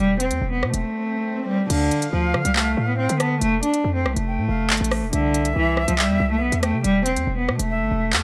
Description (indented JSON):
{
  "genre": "hip hop, drill",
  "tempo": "140 BPM",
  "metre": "4/4",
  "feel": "half-time",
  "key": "unclear",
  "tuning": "A4 = 440 Hz",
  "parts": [
    { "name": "rich cello", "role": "melody", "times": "0.0-8.2 s", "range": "D3 to D4", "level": "-24 LUFS", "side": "equal", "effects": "none" },
    { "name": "hard-hitting 808-style bass", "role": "bass", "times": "0.0-8.2 s", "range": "E1 to D3", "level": "-26 LUFS", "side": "equal", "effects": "none" },
    { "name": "swell", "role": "sound effects", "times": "0.5-1.7 s", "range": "none", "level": "-36 LUFS", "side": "equal", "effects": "none" },
    { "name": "drill drum kit", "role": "drums", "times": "0.2-8.2 s", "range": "crash cymbal, handclaps, hi-hat, rim click", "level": "-26 LUFS", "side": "equal", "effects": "none" },
    { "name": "jazz flute", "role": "second line", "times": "1.7-8.1 s", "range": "E5 to A5", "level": "-31 LUFS", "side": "equal", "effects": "delay" }
  ],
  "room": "little or no reverb",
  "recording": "none",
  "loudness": "-21 LUFS",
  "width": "mono",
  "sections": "0.0-1.7 A section; 1.7-8.2 B section",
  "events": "swell 0.5-1.7; break 0.8-1.7",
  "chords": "0.0 E5; 1.7 Dm; 3.4 F; 5.1 Cadd9; 6.8 N.C.",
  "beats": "0.41 0.84 1.27 | 1.70 2.13 2.56 2.99 | 3.42 3.84 4.27 4.70 | 5.13 5.56 5.99 6.42 | 6.84 7.27 7.70 8.13"
}